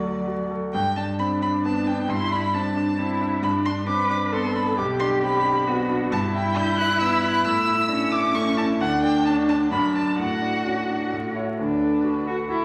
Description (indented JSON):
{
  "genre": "quick classical-period movement for piano trio",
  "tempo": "133 BPM",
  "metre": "3/4",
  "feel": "straight",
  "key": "G major, D major from 6.1 s",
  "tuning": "A4 = 445 Hz",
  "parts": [
    { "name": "warm violin", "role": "melody", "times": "0.0-12.6 s", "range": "A4 to G6", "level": "-28 LUFS", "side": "equal", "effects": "none" },
    { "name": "warm cello", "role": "second line", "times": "0.0-12.6 s", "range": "F#3 to B4", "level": "-27 LUFS", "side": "equal", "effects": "none" },
    { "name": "bright concert grand piano", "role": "accompaniment", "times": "0.0-12.6 s", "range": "B1 to D5", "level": "-28 LUFS", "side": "equal", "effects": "none" }
  ],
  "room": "wet recital hall reverb, RT60 1.5 s",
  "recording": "vinyl crackle",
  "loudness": "-23 LUFS",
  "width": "mono",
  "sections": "0.7-11.6 A section; 11.6-12.6 B section",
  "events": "none",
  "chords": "0.0 D; 0.7 G; 2.1 D5/G; 3.4 G; 4.8 G/B; 6.1 Em/G; 7.5 A; 8.8 Dmaj7; 9.7 D/F#; 10.2 D/A; 11.1 A; 11.6 D"
}